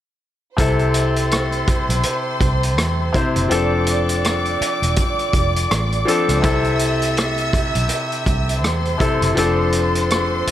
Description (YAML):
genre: lush 1970s-style soul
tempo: 82 BPM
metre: 4/4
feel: swing 58% on 16ths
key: C major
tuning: A4 = 435 Hz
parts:
  - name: warm studio string section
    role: second line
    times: 0.6-10.5 s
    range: C5 to E6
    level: -24 LUFS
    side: right 1 dB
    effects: tape echo
  - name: clear baby grand piano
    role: accompaniment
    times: 0.6-10.5 s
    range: C3 to C5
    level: -20 LUFS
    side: left 3 dB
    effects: none
  - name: vintage muted fingered electric bass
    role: bass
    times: 0.6-10.5 s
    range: E1 to E2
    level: -21 LUFS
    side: right 1 dB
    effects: none
  - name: vintage drum kit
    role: drums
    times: 0.6-10.5 s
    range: hi-hat, kick drum, rim click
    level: -22 LUFS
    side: right 1 dB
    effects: none
room: light reverb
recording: none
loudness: -16 LUFS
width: side -12 dB against mid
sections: 0.6-10.5 A section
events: none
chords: 0.6 C6; 3.5 F6; 6.4 C6; 9.4 F6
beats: | 0.58 1.32 2.05 2.78 | 3.51 4.24 4.97 5.70 | 6.44 7.17 7.90 8.63 | 9.36 10.10